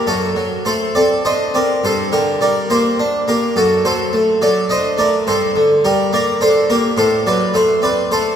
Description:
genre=classical, baroque-style suite movement for harpsichord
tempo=70 BPM (dotted quarters)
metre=12/8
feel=rubato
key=G minor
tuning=A4 = 440 Hz
part: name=harpsichord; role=solo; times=0.0-8.4 s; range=F#2 to E5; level=-13 LUFS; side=equal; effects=none
room=wet church reverb, RT60 3.2 s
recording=recorded in a church or concert hall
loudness=-13 LUFS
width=side -8 dB against mid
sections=0.0-8.4 A section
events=none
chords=0.1 D7/F#; 1.8 Gm; 3.6 D7/F#; 5.3 Gm; 7.0 F#dim/A

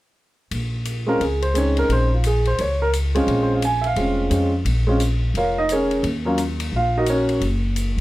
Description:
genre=jazz piano trio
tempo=174 BPM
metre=4/4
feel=swing 63% on 8ths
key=Bb minor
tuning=A4 = 442 Hz
part: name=upright bass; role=bass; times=0.5-8.0 s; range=F1 to F2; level=-22 LUFS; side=equal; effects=none
part: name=swinging big-band drum kit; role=drums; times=0.5-8.0 s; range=hi-hat, ride cymbal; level=-32 LUFS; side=left 5 dB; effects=none
part: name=warm grand piano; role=melody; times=1.1-7.4 s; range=Gb3 to Ab5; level=-20 LUFS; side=right 1 dB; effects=none
room=light reverb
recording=none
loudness=-18 LUFS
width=side -17 dB against mid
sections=0.5-8.0 A section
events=none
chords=0.5 Bbm7; 6.0 Ebm7

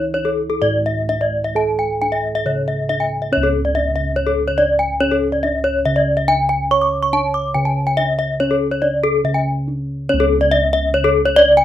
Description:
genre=Balinese gamelan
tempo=142 BPM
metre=4/4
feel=straight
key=C# pelog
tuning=A4 = 440 Hz
part: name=gamelan-type bossed gongs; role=bass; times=0.0-11.6 s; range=C#2 to C#5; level=-21 LUFS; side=right 1 dB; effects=none
part: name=gamelan-type bronze metallophone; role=arpeggios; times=0.1-11.6 s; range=A4-40c to D6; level=-16 LUFS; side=left 1 dB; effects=none
room=moderate studio ambience, RT60 0.5 s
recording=rough home demo mix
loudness=-15 LUFS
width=side -11 dB against mid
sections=0.0-3.3 A section; 3.3-11.6 B section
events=break 9.5-10.1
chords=none

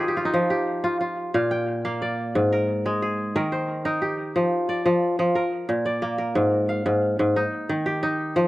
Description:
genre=west african traditional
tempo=120 BPM (dotted quarters)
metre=12/8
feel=straight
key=unclear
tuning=A4 = 440 Hz
part: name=kora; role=solo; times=0.0-8.5 s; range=Ab2 to G5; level=-21 LUFS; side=equal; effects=slapback echo
room=little or no reverb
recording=recorded outdoors, with no room sound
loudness=-21 LUFS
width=side -17 dB against mid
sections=0.0-4.4 A section; 4.4-8.5 B section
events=kora fill 0.0-0.3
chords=0.3 Fsus2; 1.3 Bb; 2.4 Absus2; 3.4 Eb; 4.4 Dm/F; 5.4 Bb; 6.4 Fmadd11/Ab; 7.4 Eb

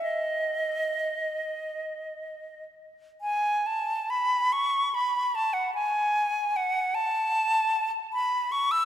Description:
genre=classical, free, expressive piece for unaccompanied flute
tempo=29-53 BPM (dotted quarters)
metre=6/8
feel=rubato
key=unclear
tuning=A4 = 440 Hz
part: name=bright silver concert flute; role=solo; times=0.0-8.8 s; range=D#5 to E6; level=-25 LUFS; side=equal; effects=none
room=wet church reverb, RT60 3.5 s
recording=none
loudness=-25 LUFS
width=side -10 dB against mid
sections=0.0-3.2 A section; 3.2-8.8 B section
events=none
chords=none

